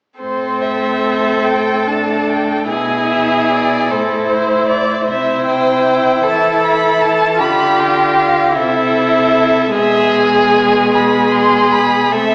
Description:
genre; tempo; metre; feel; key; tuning
classical, slow romantic movement for string quartet; 50 BPM (dotted quarters); 6/8; rubato; unclear; A4 = 437 Hz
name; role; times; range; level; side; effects
rich violin; melody; 0.2-12.3 s; C5 to C6; -20 LUFS; equal; none
rich violin; second line; 0.2-12.3 s; G4 to D5; -19 LUFS; equal; none
clear viola; accompaniment; 0.2-12.3 s; G#3 to F4; -19 LUFS; equal; none
clear cello; bass; 0.2-12.3 s; A2 to E3; -22 LUFS; equal; none
room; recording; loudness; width
wet concert hall reverb, RT60 2.0 s; recorded in a church or concert hall, small speaker sound; -14 LUFS; mono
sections
0.2-12.3 A section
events
none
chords
0.2 Am; 2.7 E/B; 3.9 Am; 5.1 C; 7.4 G5/D; 8.6 C; 9.7 Cmaj7(#5, no3)/B (rootless)

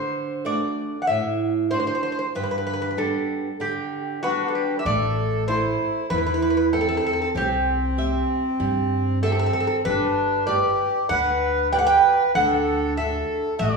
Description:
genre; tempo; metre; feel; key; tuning
greek folk, Greek bouzouki band; 96 BPM; 4/4; straight; G major; A4 = 440 Hz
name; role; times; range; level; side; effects
Greek bouzouki; melody; 0.0-13.8 s; F#4 to G5; -23 LUFS; right 1 dB; none
flamenco guitar; accompaniment; 0.0-13.8 s; G2 to E5; -27 LUFS; right 4 dB; none
accordion; second line; 4.2-13.8 s; C4 to B4; -25 LUFS; left 1 dB; none
upright bass; bass; 4.9-13.8 s; G1 to G2; -28 LUFS; left 1 dB; none
room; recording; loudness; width
wet recital hall reverb, RT60 1.5 s; recorded in a church or concert hall, studio ambience; -20 LUFS; side -4 dB against mid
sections
0.0-4.9 A section; 4.9-13.8 B section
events
none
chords
0.0 D; 2.3 G; 4.9 Am; 7.4 C; 9.9 G; 12.3 D

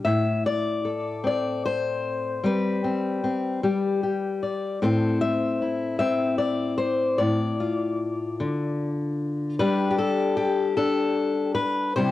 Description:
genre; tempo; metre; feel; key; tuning
folk, solo fingerstyle acoustic guitar; 50 BPM (dotted quarters); 6/8; straight; unclear; A4 = 440 Hz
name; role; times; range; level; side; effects
fingerpicked steel-string acoustic guitar; solo; 0.0-12.1 s; A2 to E5; -22 LUFS; left 2 dB; cassette tape
room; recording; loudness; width
light reverb, studio reverb; home recording on cassette; -22 LUFS; side -14 dB against mid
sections
0.0-12.1 A section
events
none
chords
0.0 Am; 2.4 Gsus4; 3.6 G; 4.8 Am; 7.2 Dm/A; 9.6 G5

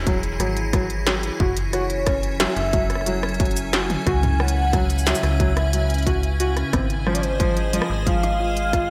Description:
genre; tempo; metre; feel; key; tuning
IDM; 90 BPM; 4/4; straight; F# minor; A4 = 438 Hz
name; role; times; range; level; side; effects
icy glass pad; sustained chords; 0.0-8.9 s; C#3 to D#5; -31 LUFS; equal; chorus, built-in reverb
metallic FM bass; bass; 0.0-8.9 s; E1 to C#2; -26 LUFS; equal; none
felt-muted upright piano; arpeggios; 0.1-8.8 s; E#3 to F#4; -29 LUFS; equal; slapback echo, delay
electronic kick drum; drums; 0.1-8.9 s; none; -26 LUFS; equal; distortion
industrial drum kit; drums; 0.1-8.9 s; cabasa, hi-hat, rim click, snare drum, toms; -29 LUFS; equal; none
bubbling stepped-filter texture; texture; 1.6-8.9 s; G#5; -38 LUFS; equal; chorus, built-in reverb
warm velvety synth lead; melody; 1.7-8.9 s; B#4 to G#5; -30 LUFS; equal; chorus, slapback echo, delay
room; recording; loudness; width
moderate concert hall reverb, RT60 2.0 s, digital ambience; big arena sound; -21 LUFS; mono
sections
0.0-8.9 A section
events
none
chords
0.0 Eadd9; 1.4 F#m7; 4.1 C#m7; 6.7 G#

